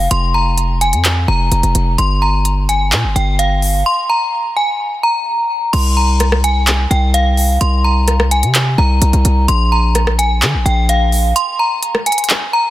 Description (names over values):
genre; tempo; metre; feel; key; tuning
hip hop, trap; 128 BPM; 4/4; half-time; unclear; A4 = 439 Hz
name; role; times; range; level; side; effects
metallic FM bell; melody; 0.0-12.7 s; F5 to C6; -16 LUFS; equal; chorus, tape echo
hard-hitting 808-style bass; bass; 0.0-11.3 s; F1 to D3; -14 LUFS; equal; none
trap drum kit; drums; 0.1-12.4 s; crash cymbal, handclaps, hi-hat, rim click; -18 LUFS; equal; overdrive
room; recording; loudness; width
little or no reverb; dense, heavily limited modern master; -12 LUFS; side -15 dB against mid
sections
0.0-5.7 A section; 5.7-12.7 B section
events
kick muted 11.4-12.7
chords
0.0 Fsus4; 2.0 Gm; 5.7 C7(no3); 9.5 N.C.